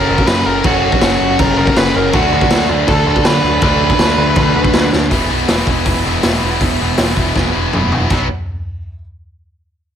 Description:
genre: punk rock.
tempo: 161 BPM.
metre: 4/4.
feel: straight.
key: unclear.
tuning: A4 = 440 Hz.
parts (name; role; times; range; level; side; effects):
high-gain lead guitar; melody; 0.0-4.9 s; F#4 to B5; -17 LUFS; equal; distortion.
distorted electric guitar; riff; 0.0-8.3 s; F#2 to E4; -19 LUFS; left 15 dB; overdrive.
overdriven electric guitar; riff; 0.0-8.3 s; E2 to D4; -19 LUFS; right 11 dB; none.
growling picked electric bass; bass; 0.0-8.3 s; E1 to D3; -19 LUFS; equal; overdrive.
raw garage drum kit; drums; 0.2-8.2 s; crash cymbal, hi-hat, kick drum, snare drum, toms; -16 LUFS; equal; none.
room: light reverb.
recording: none.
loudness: -11 LUFS.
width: side -9 dB against mid.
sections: 0.0-5.1 A section; 5.1-8.1 B section; 8.1-9.6 C section.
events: drum fill 4.9, 7.4-8.1.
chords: 0.0 F#; 2.1 D; 5.1 E; 8.1 B5.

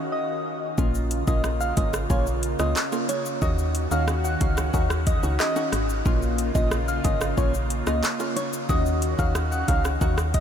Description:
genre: dancehall.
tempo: 91 BPM.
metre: 4/4.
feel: straight.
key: Bb minor.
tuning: A4 = 443 Hz.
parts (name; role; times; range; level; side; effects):
lush unison pad; sustained chords; 0.0-10.4 s; Db3 to Gb4; -32 LUFS; equal; chorus, phaser.
soft struck synth lead; melody; 0.1-10.4 s; Db5 to Gb5; -29 LUFS; equal; chorus, ping-pong delay.
percussive organ stab; accompaniment; 0.8-10.2 s; Bb3 to Gb4; -30 LUFS; left 2 dB; chorus, phaser.
woody FM bass; bass; 0.8-10.4 s; Ab1 to Eb2; -26 LUFS; equal; none.
afro-pop drum kit; drums; 0.8-10.4 s; handclaps, hi-hat, kick drum, rim click, shaker; -26 LUFS; equal; none.
bongos; percussion; 1.4-10.0 s; none; -41 LUFS; right 6 dB; none.
room: moderate huge ambient reverb, RT60 7.8 s.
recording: dreamy mix soaked in reverb.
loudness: -22 LUFS.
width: side -8 dB against mid.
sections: 0.0-10.4 A section.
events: break 0.0-0.8.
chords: 0.0 Ebm7; 0.8 Bbm; 3.4 Ebm7; 6.1 Bbm; 8.7 Ebm7.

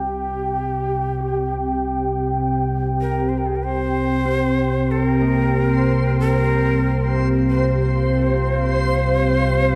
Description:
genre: dark ambient drone.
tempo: 47 BPM.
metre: 4/4.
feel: straight.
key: unclear.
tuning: A4 = 439 Hz.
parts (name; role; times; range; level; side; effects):
breathy bright shakuhachi; melody; 0.0-9.8 s; G4 to C5; -27 LUFS; equal; none.
deep dark ambient pad; sustained chords; 0.0-9.8 s; C4 to G5; -24 LUFS; equal; chorus, built-in reverb.
gamelan-type bronze metallophone; arpeggios; 0.0-9.8 s; C3 to G4; -35 LUFS; equal; none.
deep rumbling drone; drone; 0.0-9.8 s; C2 to C3; -24 LUFS; equal; built-in reverb.
backwards swelling texture; texture; 5.7-9.8 s; C5; -30 LUFS; equal; built-in reverb.
room: wet cathedral reverb, RT60 5.3 s.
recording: dark, warm production.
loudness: -20 LUFS.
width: mono.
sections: 0.0-9.8 A section.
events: fade-in on synth drone 0.0-9.8; fade-in on shakuhachi 0.0-9.8.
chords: 0.0 C5.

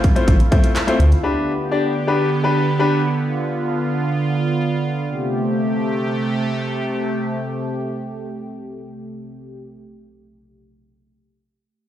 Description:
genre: dance-pop.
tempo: 125 BPM.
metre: 4/4.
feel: straight.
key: A minor.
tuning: A4 = 439 Hz.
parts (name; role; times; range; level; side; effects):
sweeping resonant pad; sustained chords; 0.0-9.6 s; C3 to G4; -21 LUFS; right 1 dB; chorus, sidechain pumping.
house drum kit; drums; 0.0-1.2 s; handclaps, hi-hat, kick drum; -15 LUFS; equal; overdrive.
clear baby grand piano; accompaniment; 0.2-3.0 s; A3 to D5; -20 LUFS; left 3 dB; sidechain pumping.
round analog bass; bass; 0.3-1.1 s; A1 to D2; -13 LUFS; equal; sidechain pumping.
room: light reverb.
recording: played on a big sound system in a bare room, stone room reverb.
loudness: -17 LUFS.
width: side -11 dB against mid.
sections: 0.0-5.1 A section; 5.1-8.9 B section.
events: drop 0.0-5.1.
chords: 0.0 Fmaj7; 1.2 G; 5.1 Am7.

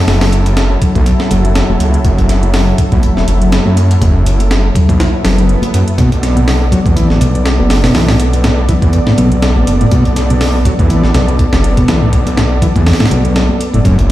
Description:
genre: breakbeat, breaks.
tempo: 122 BPM.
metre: 4/4.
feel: swing 56% on 16ths.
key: B minor pentatonic.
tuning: A4 = 441 Hz.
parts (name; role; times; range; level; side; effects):
lush unison pad; sustained chords; 0.0-14.1 s; F#3 to D5; -18 LUFS; equal; chorus, vintage 12-bit sampler grit, sidechain pumping.
detuned saw bass; bass; 0.0-14.1 s; E1 to F#2; -12 LUFS; equal; none.
breakbeat sampler-style drum kit; drums; 0.1-14.1 s; hi-hat, kick drum, snare drum; -14 LUFS; equal; none.
electronic hi-hat; drums; 0.1-14.0 s; none; -31 LUFS; right 5 dB; none.
congas; percussion; 0.1-14.0 s; none; -19 LUFS; left 2 dB; none.
swell; sound effects; 5.2-6.0 s; none; -25 LUFS; left 1 dB; none.
overdriven combo organ; riff; 6.0-14.0 s; F#2 to F#3; -15 LUFS; equal; tube saturation, tape echo.
room: light reverb, digital ambience.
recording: played on a big sound system in a bare room, stone room reverb.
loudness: -9 LUFS.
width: side -14 dB against mid.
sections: 0.0-14.1 A section.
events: swell 5.2-6.0.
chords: 0.0 F#m7; 6.0 Bm7.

